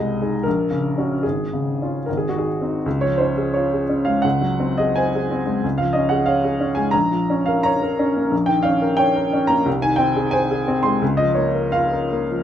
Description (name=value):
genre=classical, romantic character piece for solo piano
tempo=71-96 BPM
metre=2/4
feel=rubato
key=Db major, Ab major from 8.3 s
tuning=A4 = 440 Hz
part: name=clear upright piano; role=solo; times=0.0-12.4 s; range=Ab1 to C6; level=-18 LUFS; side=equal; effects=none
room=moderate large studio reverb, RT60 1.1 s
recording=none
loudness=-17 LUFS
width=side -10 dB against mid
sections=0.0-2.8 A section; 2.8-12.4 B section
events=none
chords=0.5 Gb/Bb; 1.2 Db/Ab; 2.1 Ab; 2.8 Db; 4.2 Ab7/Db; 5.6 Db; 6.9 Bbm; 8.3 Eb5/Bb; 9.7 Ab/C; 11.0 Bbm/Db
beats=0.45 | 1.23 2.07 | 2.85 3.55 | 4.24 4.98 | 5.64 6.27 | 6.92 7.65 | 8.32 8.99 | 9.66 10.33 | 11.01 11.74